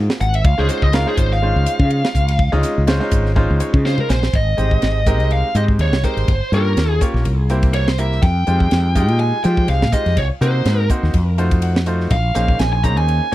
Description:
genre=electric jazz fusion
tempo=124 BPM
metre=4/4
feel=swing 55% on 16ths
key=Db major, Ab major from 4.3 s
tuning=A4 = 440 Hz
part: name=bright baby grand piano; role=accompaniment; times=0.0-13.3 s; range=Ab3 to Ab5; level=-24 LUFS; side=equal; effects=none
part: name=mellow fretless electric bass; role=bass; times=0.0-13.3 s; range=G1 to F3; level=-17 LUFS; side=equal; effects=none
part: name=tight funk drum kit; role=drums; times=0.1-13.3 s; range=hi-hat, kick drum, ride cymbal, snare drum, toms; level=-19 LUFS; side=equal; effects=none
part: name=bluesy overdriven lead guitar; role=melody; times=0.2-13.3 s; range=Ab4 to Bb5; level=-22 LUFS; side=right 1 dB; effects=distortion, tape echo
room=little or no reverb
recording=dry, close 1970s-style studio recording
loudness=-14 LUFS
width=side -15 dB against mid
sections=0.0-4.3 A section; 4.3-13.3 B section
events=lead electric guitar solo 0.0-4.3; grand piano fill 3.4-4.3, 11.1-12.1; drum fill 3.8-4.3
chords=0.5 Dbmaj9; 4.3 Abmaj7; 6.3 Gm7b5; 7.3 C7; 8.2 Fm9; 10.2 Cm7b5; 11.1 F7b9; 12.1 Bbm11

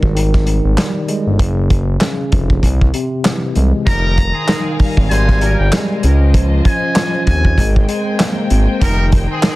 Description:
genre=hip hop, boom-bap hip-hop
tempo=97 BPM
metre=4/4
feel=swing 58% on 16ths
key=F minor from 3.9 s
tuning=A4 = 439 Hz
part: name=tine electric piano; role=accompaniment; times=0.0-9.6 s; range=C3 to Db4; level=-20 LUFS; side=left 1 dB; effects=medium stereo tremolo, high-pass filter, low-pass filter
part: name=smooth gliding synth bass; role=bass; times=0.0-9.3 s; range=F1 to Eb2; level=-14 LUFS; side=equal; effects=none
part: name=vintage drum kit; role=drums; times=0.0-9.6 s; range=handclaps, hi-hat, kick drum, snare drum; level=-15 LUFS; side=equal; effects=none
part: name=trumpet with metal mute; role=melody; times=3.9-7.7 s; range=G5 to Bb5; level=-22 LUFS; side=equal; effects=high-pass filter, low-pass filter, tape echo
part: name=clear studio string section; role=sustained chords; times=3.9-9.6 s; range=Db3 to Ab5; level=-26 LUFS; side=equal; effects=high-pass filter, low-pass filter
part: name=muted trumpet section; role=stabs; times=3.9-9.6 s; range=G3 to C5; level=-26 LUFS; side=equal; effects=high-pass filter, low-pass filter, tape echo
room=small room ambience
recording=dense, heavily limited modern master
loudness=-12 LUFS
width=side -18 dB against mid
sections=0.0-3.9 A section; 3.9-9.6 B section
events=none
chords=0.0 Fm9 (rootless); 1.4 Gb5; 2.6 Caug; 3.9 Fm11; 5.1 Abmaj9; 6.0 Dbmaj9; 7.6 Abmaj9; 8.8 Fm11

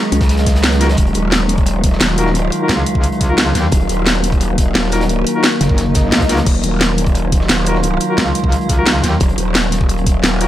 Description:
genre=dark technical drum and bass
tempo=175 BPM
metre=4/4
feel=straight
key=Eb minor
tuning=A4 = 442 Hz
part: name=metallic inharmonic drone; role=sustained chords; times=0.0-10.5 s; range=Eb3 to F4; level=-19 LUFS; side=equal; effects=chorus, built-in reverb, sidechain pumping
part: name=growl bass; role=bass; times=0.1-10.5 s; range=Eb1 to Db2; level=-17 LUFS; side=equal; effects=chorus, sidechain pumping
part: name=crunchy breakbeat drum kit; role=drums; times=0.1-10.5 s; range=hi-hat, snare drum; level=-29 LUFS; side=equal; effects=high-pass filter on hats, high-pass filter on snare, high-pass filter on room
part: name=drum and bass drum kit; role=drums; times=0.1-10.5 s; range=crash cymbal, hi-hat, snare drum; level=-17 LUFS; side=equal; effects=none
part: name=electronic kick drum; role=drums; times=0.2-10.1 s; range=none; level=-16 LUFS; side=equal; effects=none
part: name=mellow brass ensemble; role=stabs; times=0.8-10.5 s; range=Eb4 to Bb4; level=-23 LUFS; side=left 2 dB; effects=vintage 12-bit sampler grit, tape echo
part: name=metallic wobble bass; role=bass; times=2.7-9.2 s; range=Gb1 to Eb2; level=-17 LUFS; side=equal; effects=chorus
part: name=swell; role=sound effects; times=5.9-6.5 s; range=none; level=-26 LUFS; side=left 1 dB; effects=none
room=little or no reverb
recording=none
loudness=-12 LUFS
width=side -13 dB against mid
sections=0.0-10.5 A section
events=swell 5.9-6.5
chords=0.0 Ebmadd9

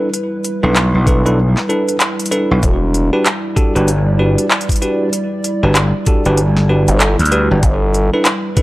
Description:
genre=glitch hop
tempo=96 BPM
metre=4/4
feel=swing 61% on 16ths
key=E minor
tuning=A4 = 440 Hz
part: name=dark analog pad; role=sustained chords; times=0.0-8.6 s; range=G3 to D5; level=-22 LUFS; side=equal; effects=chorus, sidechain pumping
part: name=bell-like tine electric piano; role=stabs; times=0.0-8.6 s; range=D4 to B4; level=-18 LUFS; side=equal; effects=sidechain pumping, tape echo
part: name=pop drum kit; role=drums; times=0.1-8.6 s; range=handclaps, hi-hat, snare drum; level=-17 LUFS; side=equal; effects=none
part: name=gritty slap bass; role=bass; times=0.6-7.6 s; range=G1 to D2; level=-13 LUFS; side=equal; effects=overdrive, tube saturation
part: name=electronic kick drum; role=drums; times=1.1-8.6 s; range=none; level=-14 LUFS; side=equal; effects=none
part: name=gritty driven synth bass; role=bass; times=2.6-3.1, 6.9-8.1 s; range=E1 to G1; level=-14 LUFS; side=equal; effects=overdrive
room=digital ambience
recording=dry, gritty hardware recording, transformer saturation, lossy compression artefacts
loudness=-12 LUFS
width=side -18 dB against mid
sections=0.0-8.6 A section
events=none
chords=0.0 G6; 2.6 Em7; 7.6 G6

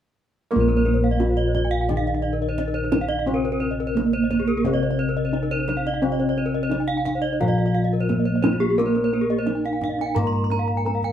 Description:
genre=Balinese gamelan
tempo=87 BPM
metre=4/4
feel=straight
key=Bb slendro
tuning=A4 = 440 Hz
part: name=gamelan-type bronze metallophone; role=melody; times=0.5-11.1 s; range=Bb3 to Bb4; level=-25 LUFS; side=right 3 dB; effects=none
part: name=gamelan-type bronze metallophone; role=accompaniment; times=0.5-11.1 s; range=C3+30c to Bb3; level=-30 LUFS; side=left 1 dB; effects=none
part: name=gamelan-type bronze metallophone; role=arpeggios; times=0.5-11.0 s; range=F4+25c to Bb5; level=-29 LUFS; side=left 5 dB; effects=none
part: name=gamelan-type bossed gongs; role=bass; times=0.5-11.1 s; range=Bb1 to Bb4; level=-24 LUFS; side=left 2 dB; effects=none
part: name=kendang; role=percussion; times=0.5-11.1 s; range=none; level=-29 LUFS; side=right 1 dB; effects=none
part: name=gamelan-type bronze metallophone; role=arpeggios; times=0.6-11.1 s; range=Ab4-45c to C6+30c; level=-28 LUFS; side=right 3 dB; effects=none
room=moderate studio reverb, RT60 0.8 s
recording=band playing live in one room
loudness=-20 LUFS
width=side -10 dB against mid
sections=0.5-11.1 A section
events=none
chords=none

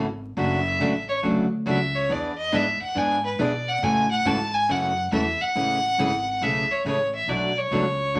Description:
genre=country, western swing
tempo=139 BPM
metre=4/4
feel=swing 65% on 8ths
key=A major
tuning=A4 = 439 Hz
part: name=picked steel-string acoustic guitar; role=accompaniment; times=0.0-8.2 s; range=B2 to G#4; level=-28 LUFS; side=equal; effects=none
part: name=upright bass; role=bass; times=0.0-8.2 s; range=F#1 to B2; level=-32 LUFS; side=equal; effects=none
part: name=clear fiddle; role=melody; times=0.4-8.2 s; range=B4 to A5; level=-26 LUFS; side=equal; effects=none
room=wet studio ambience, RT60 0.5 s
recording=vinyl crackle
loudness=-24 LUFS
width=mono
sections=0.0-5.6 A section; 5.6-8.2 B section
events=fiddle solo 0.0-5.6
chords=0.4 Dmaj7/F#; 2.1 E7; 3.8 A6; 5.6 Amaj7; 7.3 Bm7

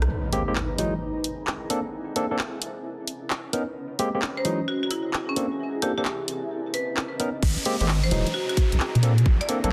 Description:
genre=UK garage, two-step garage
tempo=131 BPM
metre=4/4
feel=swing 66% on 16ths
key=unclear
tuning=A4 = 440 Hz
part: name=marimba with hard mallets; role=melody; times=0.0-0.1, 4.4-9.5 s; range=Db4 to D5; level=-32 LUFS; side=equal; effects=tape echo
part: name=deep soft wobble bass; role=bass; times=0.0-0.1, 7.4-9.7 s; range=E1 to Bb2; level=-24 LUFS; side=equal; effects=chorus, tube saturation
part: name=garage drum kit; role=drums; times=0.0-9.7 s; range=crash cymbal, handclaps, hi-hat, rim click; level=-32 LUFS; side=equal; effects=soft clipping on snare
part: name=granular cloud pad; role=texture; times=0.0-9.7 s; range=C#4 to A#5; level=-36 LUFS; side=equal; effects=built-in reverb, sidechain pumping
part: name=impact and downlifter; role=sound effects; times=0.1-1.9, 7.4-9.7 s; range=none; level=-35 LUFS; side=equal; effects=none
part: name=barky tine electric piano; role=stabs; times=0.3-9.7 s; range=E3 to A#4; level=-31 LUFS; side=equal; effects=low-pass filter, tape echo
part: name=electronic kick drum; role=drums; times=7.4-9.4 s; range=none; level=-23 LUFS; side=equal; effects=none
room=light reverb, digital ambience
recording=dense, heavily limited modern master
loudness=-26 LUFS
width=mono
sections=0.1-7.4 A section; 7.4-9.7 B section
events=band accent 0.0; impact 0.1-1.9; drop 7.4-9.7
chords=0.1 Abmaj9; 0.8 Emaj9; 1.7 Bbmaj9; 2.6 Bmaj9; 3.8 Abmaj9; 4.4 Emaj9; 5.4 Bbmaj9; 6.3 Bmaj9; 7.4 Abmaj9; 8.1 Emaj9; 9.0 Bbmaj9

